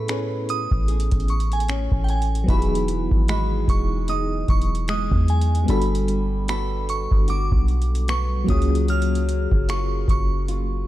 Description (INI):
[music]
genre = contemporary R&B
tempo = 75 BPM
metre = 4/4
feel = swing 58% on 16ths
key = E major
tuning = A4 = 440 Hz
[part]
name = glassy synth bell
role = melody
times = 0.0-10.9 s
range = G5 to E#6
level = -30 LUFS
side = right 2 dB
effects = chorus
[part]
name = FM electric piano with tremolo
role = accompaniment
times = 0.0-10.9 s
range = F#3 to A4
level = -29 LUFS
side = left 2 dB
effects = phaser
[part]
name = flamenco guitar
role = arpeggios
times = 0.0-10.9 s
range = E3 to B4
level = -30 LUFS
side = equal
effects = tape echo
[part]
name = warm 808-style bass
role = bass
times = 0.0-10.9 s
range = E1 to A2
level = -22 LUFS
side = equal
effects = none
[part]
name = booming analog drum machine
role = drums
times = 0.1-10.7 s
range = finger snaps, hi-hat, kick drum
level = -22 LUFS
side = equal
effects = none
[sound]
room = little or no reverb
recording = dark, warm production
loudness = -19 LUFS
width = side -15 dB against mid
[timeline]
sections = 0.0-10.9 A section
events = none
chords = 0.0 Amaj9; 2.5 Emaj9; 5.7 Gmaj9; 8.5 F#maj9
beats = 0.08 0.88 1.68 | 2.48 3.28 4.08 4.88 | 5.68 6.48 7.28 8.08 | 8.88 9.68 10.48